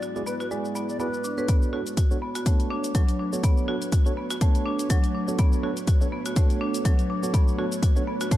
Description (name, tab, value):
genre	afro house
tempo	123 BPM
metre	4/4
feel	swing 56% on 16ths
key	B dorian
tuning	A4 = 439 Hz
part	breathy bright bass bansuri	melody	0.0-1.5 s	B4 to D5	-35 LUFS	equal	tape echo
part	ethereal airy pad	sustained chords	0.0-8.4 s	G#3 to D5	-34 LUFS	equal	ensemble chorus, built-in reverb, sidechain pumping
part	marimba with hard mallets	arpeggios	0.0-8.4 s	F#3 to B4	-30 LUFS	equal	sidechain pumping, tape echo
part	electronic shaker and hi-hat	drums	0.0-8.4 s	none	-37 LUFS	left 3 dB	overdrive
part	mellow tine electric piano	stabs	0.2-8.4 s	B3 to D5	-32 LUFS	right 4 dB	sidechain pumping, low-pass filter, tape echo
part	electronic kick drum	drums	1.5-8.4 s	none	-21 LUFS	equal	overdrive
room	light reverb, digital ambience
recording	dark, warm production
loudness	-22 LUFS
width	side -14 dB against mid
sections	0.0-1.5 A section; 1.5-8.4 B section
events	build-up 1.5-8.4; filter sweep on tine electric piano 1.5-8.4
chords	0.0 Asus2 (rootless); 1.5 Bm9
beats	0.02 0.51 1.00 | 1.49 1.97 2.46 2.95 | 3.44 3.93 4.41 4.90 | 5.39 5.88 6.37 6.85 | 7.34 7.83 8.32